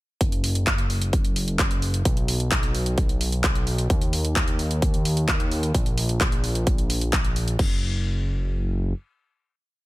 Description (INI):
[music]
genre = EDM, festival progressive house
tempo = 130 BPM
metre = 4/4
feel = straight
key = F# major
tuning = A4 = 440 Hz
[part]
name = fat analog bass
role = bass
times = 0.2-8.9 s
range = F#1 to D#2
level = -24 LUFS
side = equal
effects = sidechain pumping
[part]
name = big-room dance drum kit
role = drums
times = 0.2-7.7 s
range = crash cymbal, handclaps, hi-hat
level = -28 LUFS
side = equal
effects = overdrive
[part]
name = electronic kick drum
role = drums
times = 0.2-7.7 s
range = none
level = -23 LUFS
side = equal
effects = overdrive
[sound]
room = little or no reverb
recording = none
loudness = -21 LUFS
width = side -18 dB against mid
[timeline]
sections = 0.2-7.6 drop; 7.6-9.8 final note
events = drop 0.2-7.6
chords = none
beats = | 0.21 0.67 1.13 1.59 | 2.05 2.52 2.98 3.44 | 3.90 4.36 4.82 5.28 | 5.75 6.21 6.67 7.13 | 7.59 8.05 8.52